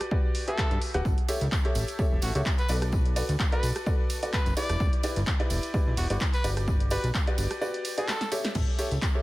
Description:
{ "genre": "piano house", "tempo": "128 BPM", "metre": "4/4", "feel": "swing 55% on 16ths", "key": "unclear", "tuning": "A4 = 440 Hz", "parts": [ { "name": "bright upright piano", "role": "riff", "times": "0.0-9.2 s", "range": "E4 to F#5", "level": "-32 LUFS", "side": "equal", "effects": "sidechain pumping, ping-pong delay" }, { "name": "punchy analog drum machine", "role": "drums", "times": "0.0-9.1 s", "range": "crash cymbal, handclaps, hi-hat, ride cymbal, rim click, snare drum", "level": "-34 LUFS", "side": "equal", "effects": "none" }, { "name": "electronic kick drum", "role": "drums", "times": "0.1-9.1 s", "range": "none", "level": "-27 LUFS", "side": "equal", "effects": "none" }, { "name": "clear trumpet", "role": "melody", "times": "0.5-8.3 s", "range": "F#4 to D5", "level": "-37 LUFS", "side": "equal", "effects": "ping-pong delay" }, { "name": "fat analog bass", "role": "bass", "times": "0.7-9.0 s", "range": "D1 to G2", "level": "-28 LUFS", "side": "equal", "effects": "sidechain pumping" }, { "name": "tambourine", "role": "percussion", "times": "1.1-9.1 s", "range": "none", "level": "-43 LUFS", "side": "right 6 dB", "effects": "none" } ], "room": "studio reverb", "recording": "none", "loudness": "-24 LUFS", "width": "side -18 dB against mid", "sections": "0.0-8.6 A section", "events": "drop 0.0-8.6; break 7.6-8.6; drum fill 8.1-8.6", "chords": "0.0 Gmaj7; 1.1 A7; 2.7 Bm7; 4.6 Em7; 6.4 Gmaj7; 8.6 A7", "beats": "0.12 0.58 | 1.05 1.52 1.99 2.46 | 2.93 3.40 3.87 4.33 | 4.80 5.27 5.74 6.21 | 6.68 7.15 7.62 8.08 | 8.55 9.02" }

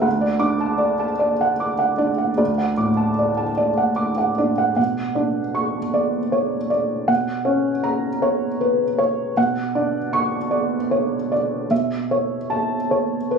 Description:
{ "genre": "neoclassical minimalist piano", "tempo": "51 BPM (dotted quarters)", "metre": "6/8", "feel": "rubato", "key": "B minor", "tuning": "A4 = 440 Hz", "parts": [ { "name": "felt-muted upright piano", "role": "solo", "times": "0.0-13.4 s", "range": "D2 to D6", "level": "-18 LUFS", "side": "right 1 dB", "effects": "none" } ], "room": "moderate studio reverb, RT60 0.6 s", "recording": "recorded on a phone in the room, studio ambience, compression", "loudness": "-18 LUFS", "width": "side -5 dB against mid", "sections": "0.0-4.8 A section; 4.8-13.4 B section", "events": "none", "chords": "0.1 D; 4.8 Bmadd9; 7.1 F#/B; 9.4 Bmadd9; 11.7 A/B", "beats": "| 0.05 1.21 | 2.40 3.59 | 4.78 5.94 | 7.09 8.24 | 9.38 10.52 | 11.71 12.91" }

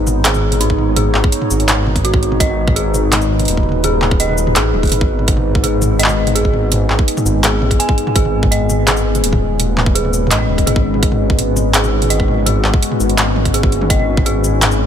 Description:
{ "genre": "half-time drum and bass", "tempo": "167 BPM", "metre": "4/4", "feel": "half-time", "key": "G# minor", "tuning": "A4 = 440 Hz", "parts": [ { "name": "deep dark ambient pad", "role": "sustained chords", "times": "0.0-14.9 s", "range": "G#3 to C#5", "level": "-20 LUFS", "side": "left 1 dB", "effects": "chorus, built-in reverb, sidechain pumping" }, { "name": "dark detuned synth bell", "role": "arpeggios", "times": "0.0-14.9 s", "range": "D#4 to G#5", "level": "-21 LUFS", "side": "equal", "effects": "chorus, vintage 12-bit sampler grit, dub echo" }, { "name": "dark detuned saw bass", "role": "bass", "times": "0.0-14.9 s", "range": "D#1 to A1", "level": "-17 LUFS", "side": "equal", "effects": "none" }, { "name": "drum and bass drum kit", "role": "drums", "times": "0.1-14.8 s", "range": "handclaps, hi-hat, shaker, toms", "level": "-18 LUFS", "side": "right 1 dB", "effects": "overdrive, small room ambience" }, { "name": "electronic kick drum", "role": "drums", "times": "0.7-14.2 s", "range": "none", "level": "-16 LUFS", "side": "equal", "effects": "overdrive, small room ambience" } ], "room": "light reverb", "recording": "none", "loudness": "-12 LUFS", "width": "side -9 dB against mid", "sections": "0.0-14.9 A section", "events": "none", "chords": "0.0 G#m", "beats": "0.25 0.61 | 0.97 1.33 1.69 2.04 | 2.40 2.76 3.12 3.48 | 3.84 4.20 4.56 4.92 | 5.28 5.64 6.00 6.36 | 6.71 7.07 7.43 7.79 | 8.15 8.51 8.87 9.23 | 9.59 9.95 10.31 10.67 | 11.03 11.39 11.74 12.10 | 12.46 12.82 13.18 13.54 | 13.90 14.26 14.62" }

